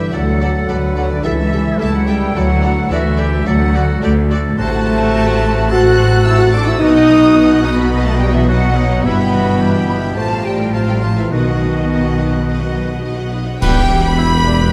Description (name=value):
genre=classical, dramatic, fast romantic movement for symphony orchestra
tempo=108 BPM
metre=4/4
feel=straight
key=E minor from 4.6 s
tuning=A4 = 439 Hz
part: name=bright flute section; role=second line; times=0.0-14.7 s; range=G4 to F#6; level=-28 LUFS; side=equal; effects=none
part: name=clear oboe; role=second line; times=0.0-14.7 s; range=D#4 to B4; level=-29 LUFS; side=equal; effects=none
part: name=warm clarinet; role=second line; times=0.0-14.7 s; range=B3 to B4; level=-30 LUFS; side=equal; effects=none
part: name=warm symphonic violin section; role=second line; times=0.0-14.7 s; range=E4 to F#6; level=-32 LUFS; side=equal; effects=none
part: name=mellow bassoon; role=accompaniment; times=0.0-14.6 s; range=B2 to G4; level=-27 LUFS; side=equal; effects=none
part: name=warm French horn section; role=sustained chords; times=0.0-13.8 s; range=D3 to F#4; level=-19 LUFS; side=equal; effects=none
part: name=concert harp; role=arpeggios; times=0.0-14.7 s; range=G2 to B4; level=-28 LUFS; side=equal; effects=none
part: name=rich symphonic double bass section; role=bass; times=0.0-14.7 s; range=E1 to D2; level=-21 LUFS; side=equal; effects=none
part: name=warm symphonic cello section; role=bass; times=0.0-14.7 s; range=C#2 to B2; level=-22 LUFS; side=equal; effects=none
part: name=rich studio violin section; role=melody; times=0.1-14.7 s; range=D5 to B5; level=-29 LUFS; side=equal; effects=none
part: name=warm symphonic viola section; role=accompaniment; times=0.1-14.7 s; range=E3 to D#5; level=-30 LUFS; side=equal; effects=none
part: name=cymbal swell, clash cymbals and concert bass drum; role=percussion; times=11.3-14.7 s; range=none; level=-22 LUFS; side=equal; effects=none
part: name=dark trombone section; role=sustained chords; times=13.6-13.8 s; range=B2 to G3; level=-32 LUFS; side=equal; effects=none
part: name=clear trumpet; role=stabs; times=13.6-13.8 s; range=B4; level=-28 LUFS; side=equal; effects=none
part: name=mellow tuba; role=bass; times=13.6-14.7 s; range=E1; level=-24 LUFS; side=equal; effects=none
room=moderate scoring stage reverb, RT60 1.8 s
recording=none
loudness=-14 LUFS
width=mono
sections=0.0-13.6 A section; 13.6-14.7 B section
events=band accent 13.6-14.2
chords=0.1 D; 1.2 A7/C#; 2.4 D; 4.6 F#dim/A; 6.8 B; 9.0 Em/G; 10.2 F/A; 11.3 B; 13.6 Em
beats=| 0.13 0.69 1.25 1.80 | 2.36 2.92 3.47 4.03 | 4.58 5.14 5.70 6.25 | 6.81 7.37 7.92 8.48 | 9.05 9.61 10.18 10.74 | 11.32 11.90 12.47 13.04 | 13.62 14.19